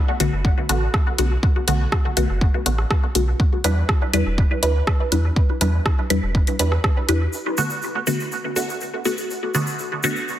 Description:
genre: dub techno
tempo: 122 BPM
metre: 4/4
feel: straight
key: B minor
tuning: A4 = 440 Hz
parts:
  - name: filtered dub chord stab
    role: stabs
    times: 0.2-10.4 s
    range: D3 to B4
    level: -23 LUFS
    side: equal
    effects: phaser, dub echo
  - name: pure sine sub bass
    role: bass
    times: 0.2-7.3 s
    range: E1 to E2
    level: -21 LUFS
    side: equal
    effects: sidechain pumping
  - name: deep house drum kit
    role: drums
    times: 0.2-7.2 s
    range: hi-hat, rim click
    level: -25 LUFS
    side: equal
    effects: soft clipping on snare, studio reverb, dub echo
  - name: electronic kick drum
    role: drums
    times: 0.4-6.9 s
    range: none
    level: -18 LUFS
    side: equal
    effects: studio reverb
  - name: egg shaker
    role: percussion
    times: 7.3-10.4 s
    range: none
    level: -30 LUFS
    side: left 2 dB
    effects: none
room: light reverb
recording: dense, heavily limited modern master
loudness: -18 LUFS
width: side -12 dB against mid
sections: 0.0-7.3 A section; 7.3-10.4 B section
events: none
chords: 0.0 Bm7; 3.4 Em7; 7.3 Bm7

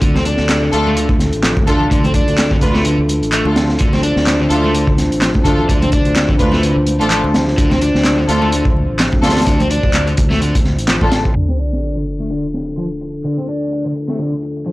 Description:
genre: breakbeat, breaks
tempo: 127 BPM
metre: 4/4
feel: swing 56% on 16ths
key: unclear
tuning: A4 = 440 Hz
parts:
  - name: dark analog pad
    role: sustained chords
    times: 0.0-14.7 s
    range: D3 to C5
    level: -21 LUFS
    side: equal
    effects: chorus, sidechain pumping
  - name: overdriven semi-hollow guitar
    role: riff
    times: 0.0-14.7 s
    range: D3 to D4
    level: -21 LUFS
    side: left 1 dB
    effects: vintage 12-bit sampler grit, low-pass filter, analog delay
  - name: fingered electric bass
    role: bass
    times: 0.0-11.3 s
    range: A1 to D2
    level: -19 LUFS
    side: equal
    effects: none
  - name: crunchy breakbeat drum kit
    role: drums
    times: 0.0-14.7 s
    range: hi-hat, kick drum, snare drum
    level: -17 LUFS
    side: equal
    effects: low-pass filter on kick, low-pass filter on hats, low-pass filter on snare, low-pass filter on room
  - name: congas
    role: percussion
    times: 0.2-11.2 s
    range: none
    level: -26 LUFS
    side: right 1 dB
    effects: none
  - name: house drum kit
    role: drums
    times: 0.5-14.7 s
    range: handclaps, hi-hat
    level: -21 LUFS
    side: equal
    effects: none
  - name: dark symphonic string section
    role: stabs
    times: 0.7-11.1 s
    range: A3 to B4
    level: -20 LUFS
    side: equal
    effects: analog delay
  - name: sub drop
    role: sound effects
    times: 11.4-13.2 s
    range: none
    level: -21 LUFS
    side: equal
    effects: none
room: little or no reverb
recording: dry, gritty hardware recording, cassette tape, low-pass filter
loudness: -12 LUFS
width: side -18 dB against mid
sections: 0.0-11.4 A section; 11.4-14.7 B section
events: impact 11.4-13.2; filter sweep on overdriven electric guitar 11.4-14.7; filter sweep 11.4-14.7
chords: 0.0 Dm

